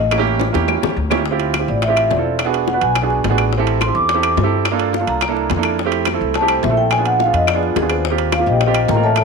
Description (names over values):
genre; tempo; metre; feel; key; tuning
Afro-Cuban jazz; 212 BPM; 4/4; straight; D minor; A4 = 440 Hz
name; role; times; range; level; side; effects
vibraphone with medium mallets; melody; 0.0-9.2 s; F4 to D6; -18 LUFS; left 2 dB; none
upright bass; bass; 0.0-9.2 s; E1 to G2; -21 LUFS; left 2 dB; none
warm grand piano; accompaniment; 0.1-9.2 s; A3 to B4; -20 LUFS; right 9 dB; none
bongos; percussion; 0.1-9.2 s; none; -25 LUFS; left 14 dB; none
claves; percussion; 0.1-9.2 s; none; -26 LUFS; left 15 dB; none
timbales; percussion; 0.1-9.2 s; none; -26 LUFS; right 10 dB; none
room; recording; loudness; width
moderate echo chamber reverb, RT60 1.6 s, studio ambience; 1960s-style stereo with parts hard left and right; -14 LUFS; side -4 dB against mid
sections
0.0-1.3 A section; 1.3-9.2 A section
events
vibraphone solo 0.0-9.2; drum fill 0.4-1.3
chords
0.1 A7b9; 1.3 Dm11; 2.4 E7; 3.5 Am7; 4.7 Gm7; 5.2 C13; 5.8 Fmaj9; 6.9 Bb7b9; 8.1 Eb6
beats
| 0.12 0.40 0.69 0.97 | 1.25 1.54 1.82 2.10 | 2.39 2.67 2.96 3.24 | 3.52 3.81 4.09 4.37 | 4.66 4.94 5.22 5.50 | 5.79 6.07 6.35 6.64 | 6.92 7.20 7.49 7.77 | 8.05 8.33 8.62 8.90 | 9.18